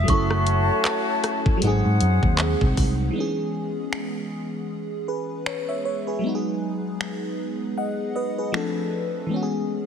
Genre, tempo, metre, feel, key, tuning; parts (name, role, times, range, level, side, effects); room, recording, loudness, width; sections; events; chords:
contemporary R&B; 78 BPM; 4/4; swing 58% on 16ths; C# minor; A4 = 440 Hz
synth chime; melody; 0.0-0.8 s; C#6; -29 LUFS; left 1 dB; ensemble chorus, ping-pong delay
FM electric piano with soft pad layer; accompaniment; 0.0-9.9 s; E3 to F#5; -25 LUFS; equal; chorus, phaser
flute section; sustained chords; 0.0-3.1 s; F#4 to A5; -26 LUFS; left 1 dB
vintage muted fingered electric bass; bass; 0.0-3.1 s; F#1 to G#2; -22 LUFS; equal
trap drum kit; drums; 0.1-8.8 s; finger snaps, handclaps, hi-hat, kick drum, rim click; -25 LUFS; equal
light reverb; heavily compressed radio sound, multiband compression; -22 LUFS; side -8 dB against mid
0.0-3.2 A section; 3.2-9.9 B section
0.1 F#m7; 1.6 G#7; 3.2 C#m7; 6.2 G#m7; 8.5 Dm7; 9.3 C#m7